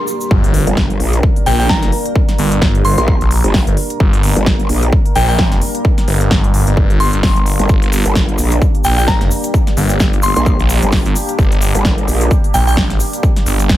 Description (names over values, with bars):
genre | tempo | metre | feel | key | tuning
bass house | 130 BPM | 4/4 | swing 57% on 16ths | G minor | A4 = 444 Hz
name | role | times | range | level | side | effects
glassy synth bell | melody | 0.0-12.7 s | G5 to C6 | -20 LUFS | left 1 dB | chorus, tremolo, vintage 12-bit sampler grit, dub echo
deep dark ambient pad | sustained chords | 0.0-13.8 s | G3 to Bb4 | -22 LUFS | equal | chorus, built-in reverb, vintage 12-bit sampler grit, sidechain pumping
swell and impact | sound effects | 0.0-2.2 s | none | -24 LUFS | equal | none
tube shaker | percussion | 0.1-0.3, 7.7-13.8 s | none | -27 LUFS | left 1 dB | none
phased detuned saw bass | bass | 0.3-13.8 s | G1 to Bb1 | -15 LUFS | equal | phaser, sidechain pumping
electronic kick drum | drums | 0.3-13.8 s | none | -14 LUFS | equal | overdrive, small room ambience
big-room dance drum kit | drums | 0.4-13.8 s | hi-hat, snare drum | -20 LUFS | equal | overdrive, small room ambience
growl bass | bass | 0.7-12.3 s | G1 to Bb1 | -15 LUFS | equal | chorus, overdrive, sidechain pumping
room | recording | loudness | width
little or no reverb | none | -11 LUFS | side -14 dB against mid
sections
0.3-13.8 A section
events
swell 0.0-0.3; drop 0.3-13.8; impact 0.3-2.2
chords
0.3 Gm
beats
| 0.31 0.77 1.23 1.69 | 2.16 2.62 3.08 3.54 | 4.00 4.46 4.92 5.39 | 5.85 6.31 6.77 7.23 | 7.69 8.16 8.62 9.08 | 9.54 10.00 10.46 10.93 | 11.39 11.85 12.31 12.77 | 13.23 13.69